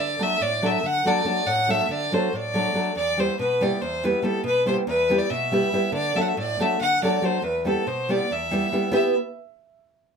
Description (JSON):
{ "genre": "balkan folk", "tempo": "281 BPM (eighths)", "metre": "7/8", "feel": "straight", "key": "E minor", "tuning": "A4 = 440 Hz", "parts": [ { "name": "rich fiddle", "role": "melody", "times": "0.0-9.1 s", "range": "A4 to F#5", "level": "-24 LUFS", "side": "equal", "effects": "none" }, { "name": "nylon-string guitar", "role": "accompaniment", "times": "0.0-9.1 s", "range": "E2 to B4", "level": "-24 LUFS", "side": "equal", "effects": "none" } ], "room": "moderate studio reverb, RT60 0.5 s", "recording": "none", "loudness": "-20 LUFS", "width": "side -6 dB against mid", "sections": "0.0-8.9 A section; 8.9-10.2 B section", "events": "none", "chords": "0.0 D; 2.9 Em; 5.9 D; 7.4 Em" }